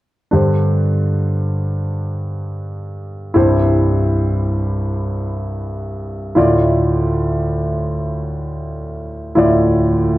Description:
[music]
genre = pop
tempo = free time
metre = none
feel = none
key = unclear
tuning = A4 = 443 Hz
[part]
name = warm grand piano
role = accompaniment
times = 0.3-10.2 s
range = C2 to D5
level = -15 LUFS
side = equal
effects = none
[sound]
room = light reverb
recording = dry, close 1970s-style studio recording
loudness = -15 LUFS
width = side -16 dB against mid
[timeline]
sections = 0.3-10.2 A section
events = none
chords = 0.3 Gsus4; 3.4 C; 6.4 Dmadd9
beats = free time

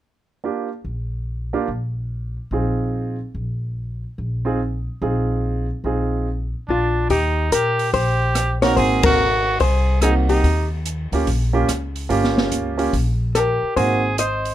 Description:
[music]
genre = jazz, small-group swing and bop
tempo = 144 BPM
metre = 4/4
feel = swing 64% on 8ths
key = Eb mixolydian from 7.1 s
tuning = A4 = 442 Hz
[part]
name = warm grand piano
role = accompaniment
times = 0.4-14.0 s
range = Bb3 to Ab4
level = -22 LUFS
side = right 4 dB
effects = none
[part]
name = upright bass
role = bass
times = 0.8-14.5 s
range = G1 to Bb2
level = -22 LUFS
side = equal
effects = none
[part]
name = hollow-body jazz guitar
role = melody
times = 6.7-10.7, 13.3-14.5 s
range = F4 to Eb5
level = -21 LUFS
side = left 4 dB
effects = none
[part]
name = clear trumpet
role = second line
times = 6.7-10.7, 13.4-14.5 s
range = D4 to C5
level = -22 LUFS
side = right 3 dB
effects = none
[part]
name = open jazz drum kit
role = drums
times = 7.1-14.5 s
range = hi-hat, kick drum, ride cymbal, rim click, snare drum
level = -25 LUFS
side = equal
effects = none
[sound]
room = light reverb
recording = none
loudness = -18 LUFS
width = side -12 dB against mid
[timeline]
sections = 0.4-7.1 A section; 7.1-14.5 B section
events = band accent 9.0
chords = 0.4 Bb6; 2.1 Bb7sus4; 6.3 Bb; 7.1 Eb; 8.8 Ab9; 10.4 Eb9; 13.8 Ab9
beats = | 0.43 0.85 1.26 1.68 | 2.10 2.52 2.93 3.35 | 3.77 4.19 4.60 5.02 | 5.44 5.85 6.27 6.69 | 7.11 7.52 7.94 8.35 | 8.77 9.19 9.60 10.02 | 10.44 10.85 11.27 11.68 | 12.10 12.52 12.93 13.35 | 13.76 14.18

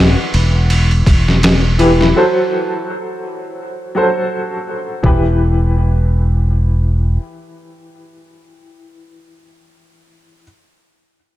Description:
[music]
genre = trip hop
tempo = 83 BPM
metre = 4/4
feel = swing 56% on 16ths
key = E minor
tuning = A4 = 440 Hz
[part]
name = warm upright piano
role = accompaniment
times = 0.0-10.4 s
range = E3 to C5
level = -17 LUFS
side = equal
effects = tremolo, tape echo
[part]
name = fingered electric bass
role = bass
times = 0.0-7.2 s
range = E1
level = -13 LUFS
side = equal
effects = tube saturation
[part]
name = trip hop sampler-style drum kit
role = drums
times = 0.3-5.2 s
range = kick drum, ride cymbal, snare drum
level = -14 LUFS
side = equal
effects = overdrive
[sound]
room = digital ambience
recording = none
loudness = -12 LUFS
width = side -14 dB against mid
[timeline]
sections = 0.0-5.0 A section; 5.0-7.9 B section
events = none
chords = 0.0 Em; 2.1 F#dim; 5.0 Em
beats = 0.69 1.42 | 2.14 2.86 3.59 4.31 | 5.03 5.75 6.48 7.20

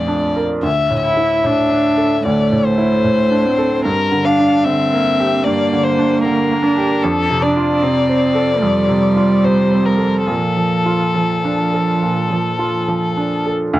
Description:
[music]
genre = neoclassical piano and strings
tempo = 69-77 BPM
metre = 4/4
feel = rubato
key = unclear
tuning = A4 = 439 Hz
[part]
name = muted violin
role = melody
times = 0.0-13.5 s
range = A4 to F5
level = -18 LUFS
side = left 4 dB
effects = none
[part]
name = muted cello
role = second line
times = 0.0-12.9 s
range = F3 to E4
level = -17 LUFS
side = right 2 dB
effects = none
[part]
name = bright baby grand piano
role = accompaniment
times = 0.0-13.8 s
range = Bb1 to Bb4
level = -18 LUFS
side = right 2 dB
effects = none
[sound]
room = moderate booth ambience, RT60 0.2 s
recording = worn, warbling old tape, cassette tape, warbly pitch drift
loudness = -13 LUFS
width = side -15 dB against mid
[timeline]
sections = 0.0-13.7 A section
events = none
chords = 0.0 Bbmaj7; 0.6 Dsus2; 3.9 Gm; 7.0 F; 10.3 Bbmaj7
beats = | 0.64 1.45 2.26 3.06 | 3.86 4.66 5.46 6.24 | 7.03 7.82 8.62 9.44 | 10.28 11.15 12.02 12.88 | 13.73

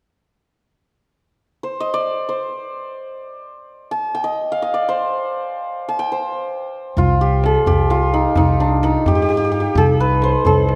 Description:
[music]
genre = Persian modal ensemble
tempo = free time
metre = none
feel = none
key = C avaz esfahan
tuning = A4 = 444 Hz
[part]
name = santur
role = melody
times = 1.6-10.8 s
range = D4 to Ab5+50c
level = -21 LUFS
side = equal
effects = none
[part]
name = upright bass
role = bass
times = 7.0-10.8 s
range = C2 to G2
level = -21 LUFS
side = equal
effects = none
[part]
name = tombak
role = percussion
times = 7.0-10.8 s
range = none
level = -24 LUFS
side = equal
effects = none
[sound]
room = moderate recital hall reverb, RT60 1.4 s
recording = none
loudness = -18 LUFS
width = mono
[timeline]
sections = 1.4-7.0 A section; 7.0-10.8 B section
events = none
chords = none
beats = free time

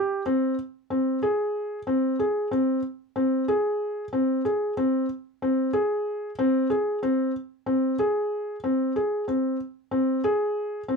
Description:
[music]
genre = contemporary instrumental, contemporary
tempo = 186 BPM (eighths)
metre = 7/8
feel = straight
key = unclear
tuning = A4 = 442 Hz
[part]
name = felt-muted upright piano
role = solo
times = 0.0-11.0 s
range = C4 to Ab4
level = -23 LUFS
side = equal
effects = none
[sound]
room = light reverb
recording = dark, warm production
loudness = -23 LUFS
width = side -4 dB against mid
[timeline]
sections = 0.6-11.0 A section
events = none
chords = none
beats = 0.26 | 0.58 0.90 1.22 1.54 1.87 2.19 2.51 | 2.83 3.15 3.48 3.80 4.12 4.45 4.77 | 5.09 5.41 5.73 6.06 6.38 6.70 7.02 | 7.34 7.67 7.99 8.31 8.63 8.96 9.28 | 9.60 9.92 10.24 10.57 10.89

